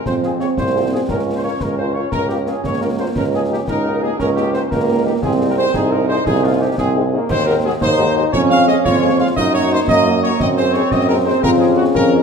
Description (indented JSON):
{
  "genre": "military-style march for wind band",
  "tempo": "116 BPM (dotted quarters)",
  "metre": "6/8",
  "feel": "straight",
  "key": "Ab major, Db major from 7.3 s",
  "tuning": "A4 = 440 Hz",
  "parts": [
    { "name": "mellow trumpet section", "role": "melody", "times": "0.0-12.2 s", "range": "F4 to F5", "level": "-20 LUFS", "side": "equal", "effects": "none" },
    { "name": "warm trombone section", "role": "sustained chords", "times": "0.1-12.2 s", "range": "Ab3 to F4", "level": "-21 LUFS", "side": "right 2 dB", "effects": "none" },
    { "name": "clear tuba", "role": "bass", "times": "0.1-12.2 s", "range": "C2 to Gb2", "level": "-18 LUFS", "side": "right 2 dB", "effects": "none" },
    { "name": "concert snare drum, concert bass drum and clash cymbals", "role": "drums", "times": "0.1-12.1 s", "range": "none", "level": "-25 LUFS", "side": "left 1 dB", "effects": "none" },
    { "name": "mellow French horn section", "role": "accompaniment", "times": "0.2-12.2 s", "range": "Ab3 to Bb4", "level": "-23 LUFS", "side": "left 7 dB", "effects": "none" }
  ],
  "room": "wet recital hall reverb, RT60 1.3 s",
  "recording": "none",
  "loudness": "-14 LUFS",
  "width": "side -6 dB against mid",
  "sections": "0.0-12.2 A section",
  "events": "none",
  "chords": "0.0 Fm; 1.1 Bbm/Db; 3.2 Eb7/Db; 5.2 Ab/C; 7.3 Ab7/Eb; 8.3 Db/F; 9.4 Ebm/Gb; 10.4 Ab7/Gb; 11.4 Db/F",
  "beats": "| 0.06 0.58 | 1.09 1.61 | 2.13 2.64 | 3.16 3.68 | 4.19 4.71 | 5.23 5.75 | 6.26 6.78 | 7.30 7.81 | 8.33 8.85 | 9.37 9.88 | 10.40 10.92 | 11.44 11.95"
}